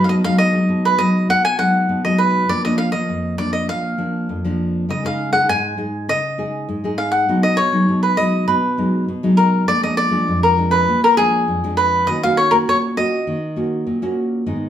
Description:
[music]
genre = samba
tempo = 100 BPM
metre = 4/4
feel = straight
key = Eb minor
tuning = A4 = 441 Hz
[part]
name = cavaquinho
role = melody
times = 0.0-14.1 s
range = Ab4 to Ab5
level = -17 LUFS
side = equal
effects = none
[part]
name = nylon-string guitar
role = accompaniment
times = 0.0-14.7 s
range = F2 to Ab4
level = -19 LUFS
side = equal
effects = none
[sound]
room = wet studio reverb, RT60 0.8 s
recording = heard from further back in the room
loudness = -15 LUFS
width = side -10 dB against mid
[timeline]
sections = 0.0-14.5 A section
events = none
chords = 0.1 Abm7/Cb; 2.5 Bb; 4.9 Dbsus2; 7.3 Abm7/Cb; 9.7 Bb7; 12.1 Ebm7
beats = | 0.09 0.69 1.29 1.89 | 2.49 3.09 3.69 4.29 | 4.89 5.49 6.09 6.69 | 7.28 7.88 8.48 9.08 | 9.68 10.28 10.88 11.47 | 12.07 12.67 13.27 13.87 | 14.46

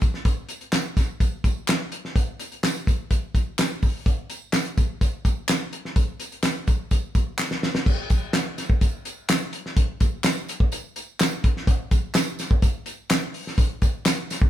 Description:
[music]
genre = soul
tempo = 126 BPM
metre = 4/4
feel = straight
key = none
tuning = none
[part]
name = warm soul drum kit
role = drums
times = 0.0-14.5 s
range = crash cymbal, hi-hat, kick drum, snare drum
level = -22 LUFS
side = equal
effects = none
[part]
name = tambourine and handclaps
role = percussion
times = 0.0-14.4 s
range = none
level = -31 LUFS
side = right 1 dB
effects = none
[sound]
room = light reverb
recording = band playing live in one room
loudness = -21 LUFS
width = side -12 dB against mid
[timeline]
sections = 0.0-7.9 A section; 7.9-14.5 B section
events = drum fill 7.4-7.9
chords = none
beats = | 0.25 0.73 1.21 1.68 | 2.16 2.63 3.11 3.58 | 4.06 4.54 5.01 5.49 | 5.96 6.44 6.92 7.39 | 7.87 8.34 8.82 9.29 | 9.77 10.24 10.72 11.20 | 11.67 12.15 12.63 13.10 | 13.58 14.06

